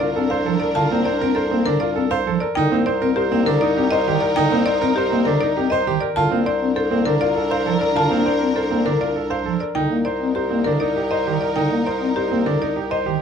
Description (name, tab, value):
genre	classical, minimalist pattern music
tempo	100 BPM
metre	3/4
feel	straight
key	C dorian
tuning	A4 = 440 Hz
part	buzzing marimba with hard mallets	melody	0.0-13.1 s	G4 to A5	-24 LUFS	left 6 dB	none
part	rich symphonic violin section	sustained chords	0.0-13.2 s	D4 to Bb4	-27 LUFS	left 1 dB	none
part	bright baby grand piano	arpeggios	0.0-13.2 s	C4 to C5	-23 LUFS	right 8 dB	none
part	clear bass clarinet	bass	0.0-13.2 s	C2	-24 LUFS	left 1 dB	none
part	pipe organ, stopped flute	accompaniment	0.2-13.2 s	D3 to C4	-23 LUFS	left 1 dB	none
room	wet large studio reverb, RT60 0.9 s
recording	dark, warm production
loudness	-17 LUFS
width	side -7 dB against mid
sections	0.0-13.2 A section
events	none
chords	0.0 Bbmaj7/C; 2.6 Cm7; 6.2 Bbmaj7/C; 9.8 Cm7